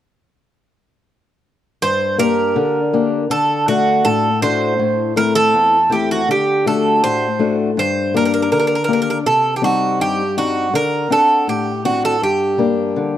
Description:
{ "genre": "greek folk", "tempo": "81 BPM", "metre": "2/4", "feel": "straight", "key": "G harmonic minor", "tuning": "A4 = 440 Hz", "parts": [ { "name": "Greek bouzouki", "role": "melody", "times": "1.8-13.2 s", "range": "F#4 to C5", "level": "-16 LUFS", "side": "right 3 dB", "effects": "none" }, { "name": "fingerpicked old ladder-braced acoustic guitar", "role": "accompaniment", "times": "1.8-13.2 s", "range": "E2 to F#5", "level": "-18 LUFS", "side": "left 5 dB", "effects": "none" } ], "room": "light reverb", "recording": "dry, close 1970s-style studio recording", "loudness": "-14 LUFS", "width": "side -11 dB against mid", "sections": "1.8-13.2 A section", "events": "none", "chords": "1.8 Gm; 3.3 D; 4.8 Am; 6.3 D; 7.8 Gm; 9.3 Cm; 10.7 D7; 12.2 Gm" }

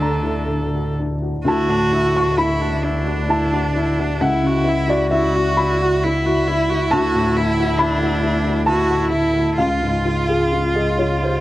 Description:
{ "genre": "neoclassical piano and strings", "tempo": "67 BPM", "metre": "3/4", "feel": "uneven beats, rubato", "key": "D major", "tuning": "A4 = 440 Hz", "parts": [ { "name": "rich cello", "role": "second line", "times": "0.0-11.4 s", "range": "D3 to F#4", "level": "-22 LUFS", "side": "right 2 dB", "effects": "none" }, { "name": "warm upright piano", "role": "accompaniment", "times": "0.0-11.4 s", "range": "C#2 to C#6", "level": "-20 LUFS", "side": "left 2 dB", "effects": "none" }, { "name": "warm viola", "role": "accompaniment", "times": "0.0-11.4 s", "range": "D4 to A4", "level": "-24 LUFS", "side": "right 1 dB", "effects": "none" }, { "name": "warm double bass", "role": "bass", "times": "0.0-11.4 s", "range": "C#2 to D2", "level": "-23 LUFS", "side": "equal", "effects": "none" } ], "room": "wet small room reverb, RT60 0.5 s", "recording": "cassette tape", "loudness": "-16 LUFS", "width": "side -15 dB against mid", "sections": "0.0-1.5 A section; 1.5-11.4 A section", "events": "none", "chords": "0.0 Dadd9; 4.2 F#5/C#; 6.9 Dadd9; 9.6 C#" }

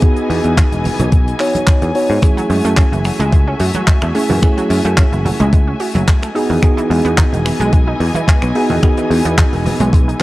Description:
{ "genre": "nu-disco, nu disco", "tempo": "109 BPM", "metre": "4/4", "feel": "swing 54% on 16ths", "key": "unclear", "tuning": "A4 = 441 Hz", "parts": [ { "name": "mellow reed electric piano", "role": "accompaniment", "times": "0.0-10.2 s", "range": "A3 to C#5", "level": "-19 LUFS", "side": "right 1 dB", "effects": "spring reverb, sidechain pumping, tape echo" }, { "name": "muted studio string section", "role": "sustained chords", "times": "0.0-10.2 s", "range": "E3 to G#5", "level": "-24 LUFS", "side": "left 2 dB", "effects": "sidechain pumping" }, { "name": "electronic kick drum", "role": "drums", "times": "0.0-10.0 s", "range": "none", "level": "-11 LUFS", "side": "equal", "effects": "none" }, { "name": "tight funk drum kit", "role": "drums", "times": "0.0-10.2 s", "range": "finger snaps, handclaps, hi-hat, toms", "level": "-22 LUFS", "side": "equal", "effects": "none" }, { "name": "picked electric bass", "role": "bass", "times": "0.3-10.1 s", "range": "E1 to G#2", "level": "-17 LUFS", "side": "equal", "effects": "none" }, { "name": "congas", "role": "percussion", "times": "0.8-9.9 s", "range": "none", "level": "-23 LUFS", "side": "right 1 dB", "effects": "none" }, { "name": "wide unison pluck", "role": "arpeggios", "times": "2.2-10.2 s", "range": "D#3 to G#4", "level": "-22 LUFS", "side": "right 2 dB", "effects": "sidechain pumping, analog delay" } ], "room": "small room ambience", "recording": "dry, gritty hardware recording", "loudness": "-11 LUFS", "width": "side -18 dB against mid", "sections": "0.0-10.2 A section", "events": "none", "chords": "0.0 Emaj7; 2.2 F#m9; 6.4 Emaj7" }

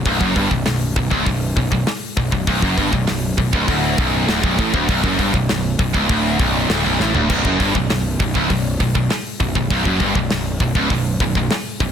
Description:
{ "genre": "heavy metal", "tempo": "100 BPM", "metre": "4/4", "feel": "straight", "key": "B minor", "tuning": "A4 = 440 Hz", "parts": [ { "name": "heavy high-gain guitar", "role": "riff", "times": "0.0-11.9 s", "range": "B1 to A2", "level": "-21 LUFS", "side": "right 11 dB", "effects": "distortion" }, { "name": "scooped high-gain guitar", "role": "riff", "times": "0.0-11.9 s", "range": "B1 to A2", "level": "-21 LUFS", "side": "left 10 dB", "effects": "distortion" }, { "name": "fuzz picked electric bass", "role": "bass", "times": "0.0-11.9 s", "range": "B0 to A1", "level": "-23 LUFS", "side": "equal", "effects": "overdrive" }, { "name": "modern studio drum kit", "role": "drums", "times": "0.1-11.9 s", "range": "crash cymbal, hi-hat, kick drum, snare drum, toms", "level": "-22 LUFS", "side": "equal", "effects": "none" }, { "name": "heavy high-gain guitar", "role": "riff", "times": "7.3-11.9 s", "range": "B1 to G2", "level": "-26 LUFS", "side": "equal", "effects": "none" } ], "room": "little or no reverb", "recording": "dense, heavily limited modern master", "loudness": "-16 LUFS", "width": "side -8 dB against mid", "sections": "0.0-11.9 A section", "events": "drum fill 7.0-7.3", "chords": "0.0 Bm" }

